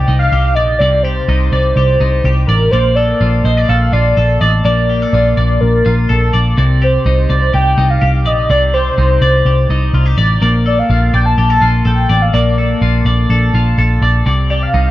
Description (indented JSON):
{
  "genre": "jangly indie pop",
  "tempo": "125 BPM",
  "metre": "4/4",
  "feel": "straight",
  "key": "Bb major",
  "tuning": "A4 = 439 Hz",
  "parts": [
    { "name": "warm velvety synth lead", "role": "melody", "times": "0.0-14.9 s", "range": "Bb4 to A5", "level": "-16 LUFS", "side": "equal", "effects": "chorus, tape echo" },
    { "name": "twelve-string electric guitar", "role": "arpeggios", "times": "0.0-14.9 s", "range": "C3 to D5", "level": "-17 LUFS", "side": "left 2 dB", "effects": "wide subtle chorus, tape echo" },
    { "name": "vintage muted picked electric bass", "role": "bass", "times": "0.0-14.9 s", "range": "A1 to C2", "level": "-12 LUFS", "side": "equal", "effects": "none" }
  ],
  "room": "light reverb",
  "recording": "none",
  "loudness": "-10 LUFS",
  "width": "side -15 dB against mid",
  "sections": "0.0-14.9 A section",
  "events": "none",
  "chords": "0.0 Cmadd9; 2.7 Bbmaj7; 6.6 Cmadd9; 10.4 Bbmaj7; 14.3 Cmadd9"
}